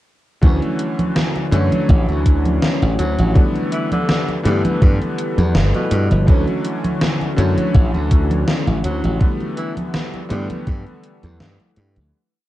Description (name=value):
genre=vaporwave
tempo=82 BPM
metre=4/4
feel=swing 54% on 16ths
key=D major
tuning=A4 = 440 Hz
part: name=bright electric grand piano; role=accompaniment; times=0.4-12.2 s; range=D3 to C#4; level=-22 LUFS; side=left 1 dB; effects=lush chorus, vintage 12-bit sampler grit, analog delay
part: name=warbly tape-like pad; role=sustained chords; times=1.1-12.1 s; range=D3 to B4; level=-28 LUFS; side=left 2 dB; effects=chorus, built-in reverb
part: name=glassy slap bass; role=bass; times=0.4-12.1 s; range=G1 to G2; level=-18 LUFS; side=equal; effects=none
part: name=electronic kick drum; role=drums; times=0.4-10.8 s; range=none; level=-13 LUFS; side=equal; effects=vintage 12-bit sampler grit
part: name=gated 80s digital drum machine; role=drums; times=0.4-12.1 s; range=congas, hi-hat, snare drum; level=-22 LUFS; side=equal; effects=gated reverb, gated reverb snare, vintage 12-bit sampler grit
part: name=warm tenor saxophone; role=melody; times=3.0-9.7 s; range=B2 to F#3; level=-27 LUFS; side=equal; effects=tape echo
room=little or no reverb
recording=dark, warm production, cassette tape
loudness=-15 LUFS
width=side -15 dB against mid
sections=0.4-12.1 groove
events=fade-out 8.2-12.1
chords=0.4 Dmaj9; 3.4 G69; 6.3 Dmaj9; 9.2 G69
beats=| 0.43 1.16 1.89 2.62 | 3.35 4.09 4.82 5.55 | 6.28 7.01 7.74 8.48 | 9.21 9.94 10.67 11.40